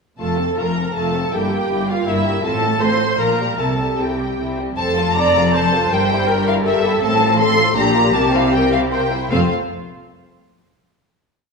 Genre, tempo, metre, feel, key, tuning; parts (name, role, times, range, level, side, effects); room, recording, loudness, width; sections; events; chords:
quick classical-period movement for string orchestra; 158 BPM; 3/4; straight; F major; A4 = 440 Hz
clear chamber violin section; melody; 0.2-9.5 s; E5 to C6; -21 LUFS; left 3 dB
warm symphonic violin section; second line; 0.2-9.5 s; G3 to C5; -23 LUFS; left 3 dB
rich studio viola section; accompaniment; 0.2-9.5 s; A3 to D5; -21 LUFS; right 1 dB
rich chamber cello section; bass; 0.2-9.5 s; F2 to C3; -22 LUFS; equal
rich chamber double bass section; bass; 0.2-9.5 s; F1 to C2; -25 LUFS; right 3 dB
wet scoring stage reverb, RT60 1.5 s; small room ambience; -15 LUFS; side -4 dB against mid
0.2-4.8 A section; 4.8-9.3 A section; 9.3-10.5 final chord
0.2 F; 1.3 Edim/G; 2.4 F/A; 3.2 Gm7/Bb; 3.6 C; 4.8 F; 5.9 Edim/G; 7.0 F/A; 7.8 Gm7/Bb; 8.1 C7; 9.3 F